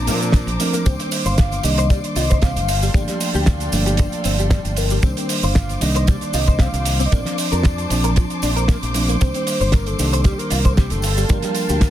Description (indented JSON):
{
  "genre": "nu-disco, nu disco",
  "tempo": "115 BPM",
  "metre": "4/4",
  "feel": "straight",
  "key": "C dorian",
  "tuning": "A4 = 440 Hz",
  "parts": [
    { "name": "mellow reed electric piano", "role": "accompaniment", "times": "0.0-11.9 s", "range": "Eb3 to D4", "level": "-25 LUFS", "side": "equal", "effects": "sidechain pumping" },
    { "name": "dark studio string section", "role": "sustained chords", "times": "0.0-11.9 s", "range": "A4 to D6", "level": "-30 LUFS", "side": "left 1 dB", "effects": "sidechain pumping" },
    { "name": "modern bright fingered electric bass", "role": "bass", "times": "0.0-11.9 s", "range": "G1 to Bb2", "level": "-21 LUFS", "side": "equal", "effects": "none" },
    { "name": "direct-recorded clean electric guitar", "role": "riff", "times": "0.1-11.8 s", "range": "D3 to C5", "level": "-28 LUFS", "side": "left 2 dB", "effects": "ensemble chorus" },
    { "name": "damped 70s drum kit", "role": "drums", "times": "0.1-11.9 s", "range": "cabasa, hi-hat, snare drum", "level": "-24 LUFS", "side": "right 3 dB", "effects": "studio ambience" },
    { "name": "tambourine", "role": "percussion", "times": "0.1-11.9 s", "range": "none", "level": "-38 LUFS", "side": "left 4 dB", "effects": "none" },
    { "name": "kick drum", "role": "drums", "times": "0.3-11.9 s", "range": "none", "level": "-15 LUFS", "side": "equal", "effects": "studio ambience" },
    { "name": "soft octave-layered synth lead", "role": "melody", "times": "0.6-11.9 s", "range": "G4 to F5", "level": "-27 LUFS", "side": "equal", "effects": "chorus, phaser, ping-pong delay" }
  ],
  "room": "light reverb, small room ambience",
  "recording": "dense, heavily limited modern master",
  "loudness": "-16 LUFS",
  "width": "side -12 dB against mid",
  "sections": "0.0-11.9 A section",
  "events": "none",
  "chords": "0.0 Bbmaj9; 0.9 Cm9; 2.7 Gm9; 5.0 Cm9; 7.1 Bbmaj9; 9.2 Cm9; 11.0 Gm9",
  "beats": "0.34 | 0.86 1.38 1.90 2.42 | 2.95 3.47 3.99 4.51 | 5.03 5.56 6.08 6.60 | 7.12 7.64 8.16 8.69 | 9.21 9.73 10.25 10.77 | 11.29 11.82"
}